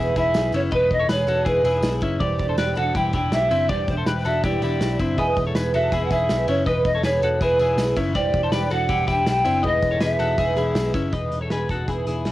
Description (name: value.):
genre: jangly indie pop.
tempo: 161 BPM.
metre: 4/4.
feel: straight.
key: E major.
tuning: A4 = 440 Hz.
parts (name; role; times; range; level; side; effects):
mellow pan flute; melody; 0.0-11.0 s; B4 to G#5; -22 LUFS; equal; cassette tape.
fingerpicked steel-string acoustic guitar; accompaniment; 0.0-12.3 s; E3 to C5; -29 LUFS; right 4 dB; cassette tape.
reed electric piano; accompaniment; 0.0-11.2 s; E4 to E5; -35 LUFS; right 2 dB; cassette tape.
twelve-string electric guitar; arpeggios; 0.0-12.3 s; C4 to D#5; -26 LUFS; left 3 dB; lush chorus, cassette tape.
vintage muted picked electric bass; bass; 0.0-12.3 s; E1 to B1; -25 LUFS; equal; none.
loose indie drum kit; drums; 0.2-12.3 s; hi-hat, kick drum, ride cymbal, snare drum; -28 LUFS; equal; cassette tape.
tambourine; percussion; 0.2-11.0 s; none; -46 LUFS; right 3 dB; none.
room: light reverb.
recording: home recording on cassette.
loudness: -19 LUFS.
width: side -15 dB against mid.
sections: 0.0-11.1 A section; 11.1-12.3 B section.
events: none.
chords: 0.0 Emaj7; 2.2 Cadd9/E; 5.2 Emaj7; 8.2 Cadd9/E; 9.6 Emaj7.